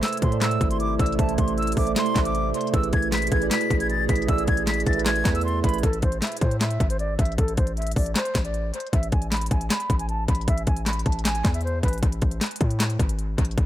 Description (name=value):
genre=hip hop, trap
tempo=155 BPM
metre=4/4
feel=half-time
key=A harmonic minor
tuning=A4 = 440 Hz
part: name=breathy silver concert flute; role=melody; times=0.0-12.0 s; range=A4 to B6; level=-29 LUFS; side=equal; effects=low-pass filter, dub echo
part: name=mellow tine electric piano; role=accompaniment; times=0.0-5.9 s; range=A3 to E5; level=-28 LUFS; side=right 8 dB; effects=low-pass filter, dub echo
part: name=warbly tape-like pad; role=sustained chords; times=0.1-5.8 s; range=B2 to G#4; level=-32 LUFS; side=equal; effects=chorus, built-in reverb, phaser
part: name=trap drum kit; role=drums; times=0.0-13.7 s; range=handclaps, hi-hat, kick drum, snare drum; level=-24 LUFS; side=left 1 dB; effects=overdrive
part: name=hard-hitting 808-style bass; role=bass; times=0.2-13.7 s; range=G#1 to A2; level=-26 LUFS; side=equal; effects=none
room=digital ambience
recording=echo-heavy mix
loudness=-21 LUFS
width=side -13 dB against mid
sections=0.0-5.8 A section; 5.8-13.7 B section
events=filter sweep 5.8-13.7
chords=0.0 Am; 2.7 E/A; 5.8 Am; 8.9 Asus2; 12.0 N.C.